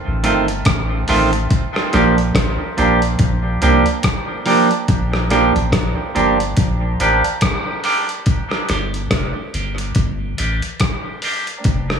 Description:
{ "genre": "dub reggae", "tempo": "71 BPM", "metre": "4/4", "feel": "swing 58% on 16ths", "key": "G minor", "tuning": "A4 = 442 Hz", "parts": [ { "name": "soft dub sub bass", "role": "bass", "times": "0.1-12.0 s", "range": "F1 to C2", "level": "-20 LUFS", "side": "left 1 dB", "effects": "none" }, { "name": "clean electric guitar", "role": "accompaniment", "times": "0.2-11.5 s", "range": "Eb3 to G4", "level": "-18 LUFS", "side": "right 3 dB", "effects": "high-pass filter, dub echo" }, { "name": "dusty soul sampler-style drum kit", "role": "drums", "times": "0.2-12.0 s", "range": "hi-hat, kick drum, rim click", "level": "-20 LUFS", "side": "left 1 dB", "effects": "none" } ], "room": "moderate spring reverb, RT60 2.6 s", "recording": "echo-heavy mix, studio ambience", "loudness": "-15 LUFS", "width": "side -7 dB against mid", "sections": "0.0-12.0 A section", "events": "filter sweep on clean electric guitar 4.9-11.7", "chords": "0.0 F7; 1.5 Bb6; 8.3 Gm7", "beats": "0.66 | 1.50 2.35 3.19 4.04 | 4.88 5.73 6.58 7.42 | 8.27 9.11 9.96 10.80 | 11.65" }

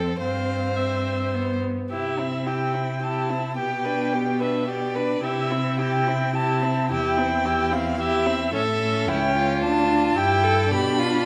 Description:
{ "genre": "quick classical-period movement for string quartet", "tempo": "108 BPM", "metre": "3/4", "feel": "straight", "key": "C major", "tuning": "A4 = 441 Hz", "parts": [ { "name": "rich violin", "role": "second line", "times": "0.0-11.3 s", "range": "E4 to C5", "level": "-28 LUFS", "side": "equal", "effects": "none" }, { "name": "warm viola", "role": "accompaniment", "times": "0.0-11.3 s", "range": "B3 to E4", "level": "-30 LUFS", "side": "equal", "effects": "none" }, { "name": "rich cello", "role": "bass", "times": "0.0-11.3 s", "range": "C#2 to C3", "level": "-30 LUFS", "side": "equal", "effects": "none" }, { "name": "warm violin", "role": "melody", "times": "0.2-11.3 s", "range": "D5 to B5", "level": "-29 LUFS", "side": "equal", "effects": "none" } ], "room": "wet recital hall reverb, RT60 1.7 s", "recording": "none", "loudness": "-23 LUFS", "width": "mono", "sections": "0.0-1.9 A section; 1.9-11.3 B section", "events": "none", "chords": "0.2 C/G; 1.3 G; 1.9 C; 3.6 G/B; 5.2 C; 6.9 C/E; 8.5 A7; 9.6 Dm; 10.2 G", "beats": "| 0.20 0.77 1.34 | 1.91 2.47 3.03 | 3.58 4.14 4.69 | 5.25 5.80 6.35 | 6.91 7.45 8.00 | 8.54 9.08 9.62 | 10.17 10.71" }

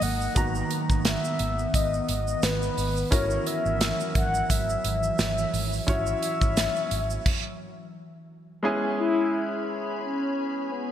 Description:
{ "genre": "1980s-style pop", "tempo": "87 BPM", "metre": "4/4", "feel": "swing 55% on 16ths", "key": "unclear", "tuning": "A4 = 439 Hz", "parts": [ { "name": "mellow horn-like synth lead", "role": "melody", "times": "0.0-10.9 s", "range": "B3 to F#5", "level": "-28 LUFS", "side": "left 2 dB", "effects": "chorus" }, { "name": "clear concert grand piano", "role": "accompaniment", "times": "0.0-10.9 s", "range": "D#3 to A#5", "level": "-31 LUFS", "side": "right 1 dB", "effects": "none" }, { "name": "glassy FM pad", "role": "sustained chords", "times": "0.0-10.9 s", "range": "D#3 to B5", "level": "-34 LUFS", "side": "equal", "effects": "ensemble chorus, built-in reverb" }, { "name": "vintage muted fingered electric bass", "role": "bass", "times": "0.0-7.2 s", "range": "G#1", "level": "-30 LUFS", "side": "equal", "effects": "none" }, { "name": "modern studio drum kit", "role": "drums", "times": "0.0-7.4 s", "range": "crash cymbal, hi-hat, kick drum, snare drum", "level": "-27 LUFS", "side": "right 1 dB", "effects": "none" }, { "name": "tube shaker", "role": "percussion", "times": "0.0-7.2 s", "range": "none", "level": "-41 LUFS", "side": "right 7 dB", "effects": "none" } ], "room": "moderate lush hall reverb, RT60 2.4 s", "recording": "bright 1980s-style digital production", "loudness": "-23 LUFS", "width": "side -10 dB against mid", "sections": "0.0-8.6 A section; 8.6-10.9 B section", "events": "stop 7.3-8.6", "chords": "0.4 Bmaj7/G#; 3.1 F#7/G#; 8.6 E6", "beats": "| 0.36 1.05 1.74 2.43 | 3.12 3.81 4.50 5.19 | 5.88 6.57 7.26 7.95 | 8.64 9.33 10.02 10.71" }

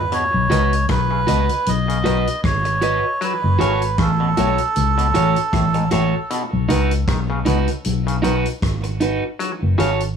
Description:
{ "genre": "roots reggae", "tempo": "78 BPM", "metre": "4/4", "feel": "swing 56% on 16ths", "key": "B mixolydian", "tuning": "A4 = 440 Hz", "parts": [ { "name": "melodica", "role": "melody", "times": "0.0-5.9 s", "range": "A4 to D#5", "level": "-21 LUFS", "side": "right 3 dB", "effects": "tape echo" }, { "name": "overdriven clav", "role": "arpeggios", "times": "0.1-9.9 s", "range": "G#2 to F#3", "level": "-26 LUFS", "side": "left 6 dB", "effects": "none" }, { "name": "vintage drum kit", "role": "drums", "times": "0.1-10.2 s", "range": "hi-hat, kick drum, rim click", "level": "-27 LUFS", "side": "equal", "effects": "none" }, { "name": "vintage muted fingered electric bass", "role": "bass", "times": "0.3-10.1 s", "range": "F#1 to C#2", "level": "-19 LUFS", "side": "left 1 dB", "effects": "none" }, { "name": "electric guitar at the edge of break-up", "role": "accompaniment", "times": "0.5-10.0 s", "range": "D#4 to D#5", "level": "-23 LUFS", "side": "right 3 dB", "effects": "harmonic tremolo, tape echo" } ], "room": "light reverb", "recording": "none", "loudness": "-16 LUFS", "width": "side -7 dB against mid", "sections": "0.1-10.2 A section", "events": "none", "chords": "0.1 B; 3.2 F#m; 6.3 B; 9.4 F#m", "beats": "| 0.12 0.89 1.67 2.44 | 3.21 3.98 4.76 5.53 | 6.31 7.08 7.85 8.63 | 9.40" }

